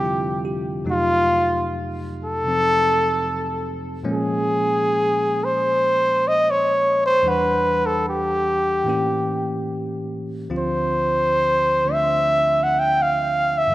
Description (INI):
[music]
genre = jazz ballad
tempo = 74 BPM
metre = 4/4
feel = swing 69% on 8ths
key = unclear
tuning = A4 = 438 Hz
[part]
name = clear trumpet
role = melody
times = 0.0-13.7 s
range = F4 to G5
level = -19 LUFS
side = equal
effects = none
[part]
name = bell-like tine electric piano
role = accompaniment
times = 0.0-13.7 s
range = D2 to F#5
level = -26 LUFS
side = equal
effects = medium stereo tremolo
[sound]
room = wet plate reverb, RT60 2.7 s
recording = rough home demo mix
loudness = -18 LUFS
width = side -16 dB against mid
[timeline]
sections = 0.0-13.7 A section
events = none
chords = 0.0 F69; 0.9 F7b9; 4.0 Bbm9; 7.2 Em9; 8.9 A7b9; 10.5 Dm9